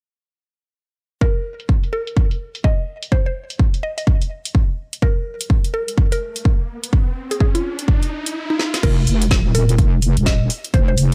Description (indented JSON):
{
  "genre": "bass house",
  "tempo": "126 BPM",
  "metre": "4/4",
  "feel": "swing 61% on 16ths",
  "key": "unclear",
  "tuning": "A4 = 440 Hz",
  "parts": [
    { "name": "mallet-like synth pluck", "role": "melody", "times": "1.2-10.9 s", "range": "Eb4 to Eb5", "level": "-28 LUFS", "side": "equal", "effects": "chorus, digital delay" },
    { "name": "electronic kick drum", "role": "drums", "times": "1.2-10.9 s", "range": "none", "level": "-18 LUFS", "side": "equal", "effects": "none" },
    { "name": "garage drum kit", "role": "drums", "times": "1.6-11.1 s", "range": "crash cymbal, hi-hat, snare drum", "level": "-27 LUFS", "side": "equal", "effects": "low-pass filter on hats, low-pass filter on snare, low-pass filter on cymbals" },
    { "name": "riser", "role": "sound effects", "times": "5.9-8.8 s", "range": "none", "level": "-33 LUFS", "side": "equal", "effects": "none" },
    { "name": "wobble bass", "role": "bass", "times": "8.8-11.1 s", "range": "Eb1 to F1", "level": "-18 LUFS", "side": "equal", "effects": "chorus, overdrive, sidechain pumping" }
  ],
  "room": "digital ambience",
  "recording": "none",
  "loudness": "-19 LUFS",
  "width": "mono",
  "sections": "1.2-8.8 A section; 8.8-11.1 B section",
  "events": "riser 5.9-8.8; kick drops out 8.4-8.8; drum fill 8.6",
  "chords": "none"
}